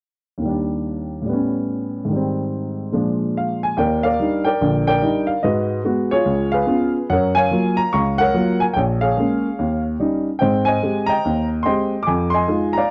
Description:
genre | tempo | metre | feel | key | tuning
solo jazz | 145 BPM | 4/4 | swing 64% on 8ths | Eb major | A4 = 442 Hz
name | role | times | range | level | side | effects
dark baby grand piano | solo | 0.4-12.9 s | Bb1 to D6 | -20 LUFS | equal | none
room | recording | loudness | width
little or no reverb | dry, close 1970s-style studio recording | -20 LUFS | mono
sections
0.4-3.8 A section; 3.8-12.9 B section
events
none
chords
0.4 Ebmaj7; 1.3 A9; 2.1 Abmaj7; 2.9 Bb7; 3.8 Ebmaj7; 5.4 Abm7; 6.3 Db7; 7.1 Gbmaj7; 8.8 Bbm7; 9.6 Eb7; 10.4 Abmaj7; 12.1 Fm7

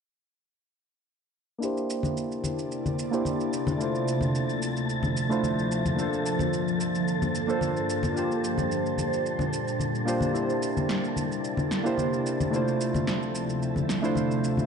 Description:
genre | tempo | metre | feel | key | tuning
sunset chillout | 110 BPM | 4/4 | straight | unclear | A4 = 441 Hz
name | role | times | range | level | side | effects
soft electric-piano-like synth keys | accompaniment | 1.6-14.7 s | A3 to C5 | -28 LUFS | right 1 dB | chorus, auto-pan, low-pass filter, tape echo
ethereal airy pad | sustained chords | 2.4-14.7 s | D2 to E5 | -30 LUFS | equal | ensemble chorus, built-in reverb, phaser, vintage 12-bit sampler grit
electronic shaker and snare drum | drums | 1.6-14.7 s | none | -36 LUFS | right 1 dB | overdrive
wind-like tuned noise texture | texture | 2.7-14.7 s | A4 to A5 | -36 LUFS | equal | built-in reverb
congas | percussion | 2.0-14.7 s | none | -32 LUFS | left 3 dB | none
room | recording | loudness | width
wet lush hall reverb, RT60 1.8 s | dark, warm production, nothing above 10.8 kHz | -25 LUFS | side -6 dB against mid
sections
1.6-14.7 A section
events
filter sweep on synth keys 1.6-14.7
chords
1.6 C9; 3.8 Dm9; 6.0 Gm11; 8.2 Bb69; 10.3 C9; 12.5 Dm9

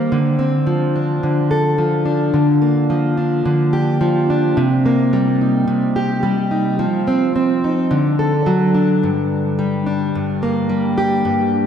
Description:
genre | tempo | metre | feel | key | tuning
pop | 108 BPM | 4/4 | swing 55% on 16ths | unclear | A4 = 441 Hz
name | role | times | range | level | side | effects
fingerpicked plugged-in steel-string acoustic guitar | solo | 0.0-11.7 s | G2 to C5 | -15 LUFS | equal | lush chorus, analog delay
room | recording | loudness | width
wet lush hall reverb, RT60 2.9 s | dreamy mix soaked in reverb | -15 LUFS | side -8 dB against mid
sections
0.1-9.0 A section; 9.0-11.7 B section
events
none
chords
0.1 Dm7; 2.3 Gm7/D; 4.6 Cm7; 6.8 F5; 7.9 D; 9.0 Gm

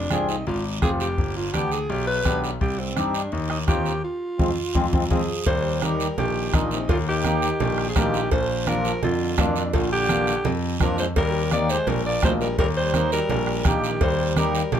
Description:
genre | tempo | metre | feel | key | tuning
latin, cumbia | 168 BPM | 4/4 | straight | unclear | A4 = 442 Hz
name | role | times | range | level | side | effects
breathy alto saxophone | melody | 0.0-14.8 s | C4 to D5 | -26 LUFS | right 1 dB | plate reverb
clear concert grand piano | bass | 0.0-14.8 s | F1 to G2 | -26 LUFS | left 1 dB | none
mellow accordion | accompaniment | 0.1-14.6 s | Ab3 to Bb4 | -27 LUFS | equal | none
bombo | percussion | 0.1-14.5 s | none | -25 LUFS | left 1 dB | none
congas | percussion | 0.1-14.8 s | none | -29 LUFS | right 2 dB | none
guiro | percussion | 0.1-14.8 s | none | -35 LUFS | right 7 dB | none
bright trombone | second line | 5.1-14.8 s | Bb2 to Bb3 | -31 LUFS | left 5 dB | none
cowbell and timbales | percussion | 5.5-14.8 s | none | -30 LUFS | right 6 dB | none
room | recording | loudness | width
light reverb | none | -20 LUFS | side -9 dB against mid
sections
0.0-5.5 A section; 5.5-14.8 B section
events
band accent 4.0-5.5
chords
0.0 Fm; 1.2 G; 2.6 Cm; 4.0 Fm; 5.5 Eb; 8.3 Bb; 11.2 Eb

